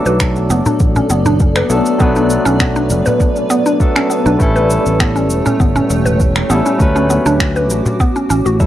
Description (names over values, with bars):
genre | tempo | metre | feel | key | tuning
organic downtempo | 100 BPM | 4/4 | straight | B minor | A4 = 440 Hz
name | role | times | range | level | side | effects
barky tine electric piano | accompaniment | 0.0-8.7 s | F#3 to B4 | -18 LUFS | left 1 dB | vintage 12-bit sampler grit, sidechain pumping, tape echo
granular cloud pad | sustained chords | 0.0-8.7 s | A3 to D6 | -19 LUFS | left 1 dB | built-in reverb, sidechain pumping
mallet-like synth pluck | arpeggios | 0.1-8.7 s | F#3 to B4 | -17 LUFS | equal | chorus, tape echo
sustaining fretless electric bass | bass | 0.1-8.7 s | E1 to D2 | -16 LUFS | equal | ensemble chorus
electronic cabasa and finger snaps | drums | 0.1-8.7 s | none | -22 LUFS | equal | none
electronic kick drum | drums | 0.2-8.7 s | none | -14 LUFS | equal | none
darbuka | percussion | 0.4-8.4 s | none | -21 LUFS | left 1 dB | none
room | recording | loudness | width
digital ambience | dry, gritty hardware recording, cassette tape | -11 LUFS | side -12 dB against mid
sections
0.0-8.7 A section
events
none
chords
0.0 Bm7; 4.4 A7; 6.8 Dmaj7; 8.0 A7